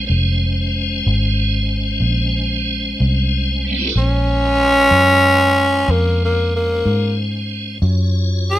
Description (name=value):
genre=slow blues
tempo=62 BPM (dotted quarters)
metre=12/8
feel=straight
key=Bb minor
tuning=A4 = 440 Hz
part: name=tonewheel organ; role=sustained chords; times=0.0-8.6 s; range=G3 to Db5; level=-22 LUFS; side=equal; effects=slow rotary speaker, overdrive, chorus vibrato
part: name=vintage muted fingered electric bass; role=bass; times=0.0-8.6 s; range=F1 to Ab2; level=-18 LUFS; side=equal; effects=none
part: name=growling tenor saxophone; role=melody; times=4.0-8.6 s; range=Bb3 to Ab4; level=-14 LUFS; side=equal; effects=none
room=light reverb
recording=none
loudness=-14 LUFS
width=side -14 dB against mid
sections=0.0-3.9 A section; 3.9-8.6 B section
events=tenor saxophone solo 3.9-8.6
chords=0.0 Bbm9; 7.8 Ebm9 (rootless)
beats=| 0.08 1.05 2.01 2.98 | 3.95 4.91 5.88 6.85 | 7.81